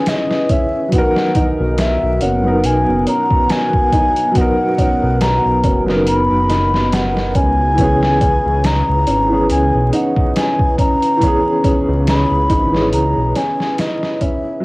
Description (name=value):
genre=trip hop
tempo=70 BPM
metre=4/4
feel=swing 56% on 16ths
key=C# dorian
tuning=A4 = 440 Hz
part: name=mellow baroque flute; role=melody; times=0.0-14.6 s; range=D#5 to B5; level=-18 LUFS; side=left 1 dB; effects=cassette tape, tape echo, plate reverb
part: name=dark upright piano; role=accompaniment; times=0.0-14.6 s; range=D#3 to A#4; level=-19 LUFS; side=equal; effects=tremolo, cassette tape, tape echo, plate reverb
part: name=dark analog pad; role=sustained chords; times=0.0-14.6 s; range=B3 to F#5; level=-24 LUFS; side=equal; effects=chorus, cassette tape, plate reverb
part: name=felt-muted upright piano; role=arpeggios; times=0.0-14.6 s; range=D#3 to D#4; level=-25 LUFS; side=right 1 dB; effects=cassette tape, analog delay, plate reverb
part: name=trip hop sampler-style drum kit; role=drums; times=0.1-14.4 s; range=hi-hat, kick drum, snare drum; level=-18 LUFS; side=equal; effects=cassette tape
part: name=dark detuned saw bass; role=bass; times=1.6-13.3 s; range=F#1 to C#2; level=-18 LUFS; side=equal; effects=tube saturation
room=light reverb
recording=home recording on cassette, vinyl crackle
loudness=-12 LUFS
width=side -23 dB against mid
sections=0.0-14.6 A section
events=fade-out 12.4-14.6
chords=0.0 C#m7; 0.9 Bmaj7; 7.8 C#m7